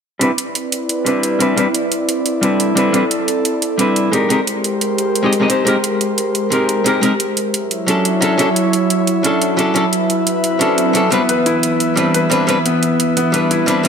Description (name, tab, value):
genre	liquid drum and bass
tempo	176 BPM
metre	4/4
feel	straight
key	C lydian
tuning	A4 = 440 Hz
part	archtop guitar, miked and amplified	accompaniment	0.2-13.9 s	F#3 to Eb5	-17 LUFS	left 1 dB	low-pass filter, tape echo
part	airy breathy pad	sustained chords	0.2-13.9 s	E3 to E5	-18 LUFS	right 1 dB	chorus
part	electronic hi-hat	drums	0.2-13.9 s	none	-20 LUFS	right 3 dB	overdrive, studio reverb
part	swell	sound effects	10.5-11.1 s	none	-23 LUFS	right 7 dB	none
part	felt-muted upright piano	arpeggios	11.1-13.9 s	B3 to B4	-17 LUFS	left 2 dB	vintage 12-bit sampler grit, tape echo
room	moderate lush hall reverb, RT60 2.1 s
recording	none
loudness	-13 LUFS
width	side -6 dB against mid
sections	0.2-13.9 A section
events	filter sweep on analog synth pad 0.2-13.9; swell 10.5-11.1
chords	0.2 Cmaj9; 4.1 Abmaj9; 7.5 Dmaj9; 11.1 Cmaj9